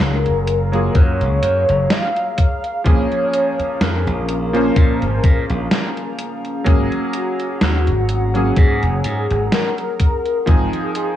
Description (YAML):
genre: vaporwave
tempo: 63 BPM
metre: 4/4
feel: swing 55% on 16ths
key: Bb minor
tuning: A4 = 440 Hz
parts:
  - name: warm velvety synth lead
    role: melody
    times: 0.0-11.2 s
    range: Gb4 to F5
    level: -22 LUFS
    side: left 1 dB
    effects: chorus, tape echo
  - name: warm electric grand piano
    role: accompaniment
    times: 0.0-11.2 s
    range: F3 to C5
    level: -23 LUFS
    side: right 1 dB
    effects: wide subtle chorus
  - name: warbly tape-like pad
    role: sustained chords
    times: 0.0-11.2 s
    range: Db4 to C6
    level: -30 LUFS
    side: left 2 dB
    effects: chorus, built-in reverb, vintage 12-bit sampler grit
  - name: slap bass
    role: bass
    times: 0.0-10.7 s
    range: Gb1 to Bb2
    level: -19 LUFS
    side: equal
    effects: tube saturation
  - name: gated 80s digital drum machine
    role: drums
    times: 0.0-11.2 s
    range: hi-hat, snare drum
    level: -21 LUFS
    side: equal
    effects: gated reverb, gated reverb snare
  - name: electronic kick drum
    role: drums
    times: 1.0-10.7 s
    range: none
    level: -13 LUFS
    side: equal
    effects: none
room: little or no reverb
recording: cassette tape, small room ambience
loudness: -15 LUFS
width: side -11 dB against mid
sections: 0.0-11.2 A section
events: none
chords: 0.0 Gbmaj9; 2.4 Bbm7; 6.7 Ab9sus4; 10.0 Fm7/Ab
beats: 0.00 0.95 1.91 | 2.86 3.81 4.76 5.71 | 6.67 7.62 8.57 9.52 | 10.48